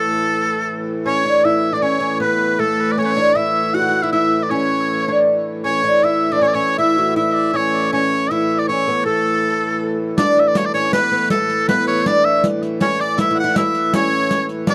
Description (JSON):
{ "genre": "medieval dance", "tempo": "158 BPM", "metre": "3/4", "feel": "straight", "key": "A major", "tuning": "A4 = 440 Hz", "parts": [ { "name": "bright shawm", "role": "melody", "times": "0.0-14.7 s", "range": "A4 to F#5", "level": "-21 LUFS", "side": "equal", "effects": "tape echo" }, { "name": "bright shawm", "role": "second line", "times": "0.0-14.7 s", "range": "A4 to F#5", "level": "-30 LUFS", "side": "equal", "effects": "none" }, { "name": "oud", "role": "second line", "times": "0.0-14.7 s", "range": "A3 to F#4", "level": "-22 LUFS", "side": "equal", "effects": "none" }, { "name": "dark hurdy-gurdy", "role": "drone", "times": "0.0-14.7 s", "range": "A2 to E3", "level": "-26 LUFS", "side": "equal", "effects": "none" }, { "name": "riq", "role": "percussion", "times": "10.2-14.7 s", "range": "none", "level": "-24 LUFS", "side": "equal", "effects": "none" } ], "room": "light reverb", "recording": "dry, close 1970s-style studio recording", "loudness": "-17 LUFS", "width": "mono", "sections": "0.0-1.1 A section; 1.1-10.2 B section; 10.2-14.7 C section", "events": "speeding up 0.0-14.7", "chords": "none", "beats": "0.30 0.68 | 1.06 1.45 1.83 | 2.21 2.59 2.98 | 3.36 3.74 4.12 | 4.50 4.88 5.26 | 5.64 6.02 6.40 | 6.78 7.16 7.54 | 7.92 8.30 8.67 | 9.05 9.43 9.80 | 10.18 10.56 10.93 | 11.31 11.69 12.06 | 12.44 12.81 13.18 | 13.56 13.93 14.30 | 14.68" }